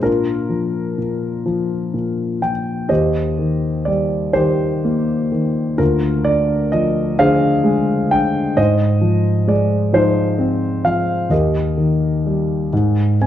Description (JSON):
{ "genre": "classical, lyrical solo piano", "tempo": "42 BPM (dotted quarters)", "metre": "6/8", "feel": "rubato", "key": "Eb major", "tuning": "A4 = 440 Hz", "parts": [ { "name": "dark concert grand piano", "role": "solo", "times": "0.0-13.3 s", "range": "D2 to Ab5", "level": "-15 LUFS", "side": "equal", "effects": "none" } ], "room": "moderate recital hall reverb, RT60 1.5 s", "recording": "dark, warm production", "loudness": "-15 LUFS", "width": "side -11 dB against mid", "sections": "0.0-13.3 A section", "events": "grand piano fill 12.7-13.3", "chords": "0.0 Bb; 2.9 Eb6; 5.8 Dm7b5; 8.6 Fm7/Ab; 11.3 Eb; 12.7 Ab5" }